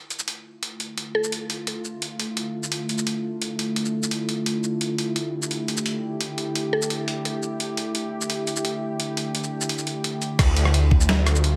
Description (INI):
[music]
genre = half-time drum and bass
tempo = 172 BPM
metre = 4/4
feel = half-time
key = D minor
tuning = A4 = 440 Hz
[part]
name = bowed-like drone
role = sustained chords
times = 0.7-11.6 s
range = D3 to G4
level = -30 LUFS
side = equal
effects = built-in reverb, sidechain pumping
[part]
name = boom bap sampler-style drum kit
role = drums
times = 0.1-11.5 s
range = crash cymbal, hi-hat, rim click, shaker, snare drum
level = -29 LUFS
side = equal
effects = none
[part]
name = mallet-like synth pluck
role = melody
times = 1.1-1.6, 6.7-7.2 s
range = A4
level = -30 LUFS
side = equal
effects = chorus, digital delay
[part]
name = phased detuned saw bass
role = bass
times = 10.4-11.6 s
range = D2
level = -21 LUFS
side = equal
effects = phaser
[part]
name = electronic kick drum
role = drums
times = 10.4-11.0 s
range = none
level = -20 LUFS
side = equal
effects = overdrive
[sound]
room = moderate echo chamber reverb, RT60 2.2 s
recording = none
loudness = -25 LUFS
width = mono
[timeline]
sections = 0.0-10.4 A section; 10.4-11.6 B section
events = filter sweep on synth drone 0.0-10.4; drop 10.4-11.6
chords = 0.0 Dmadd9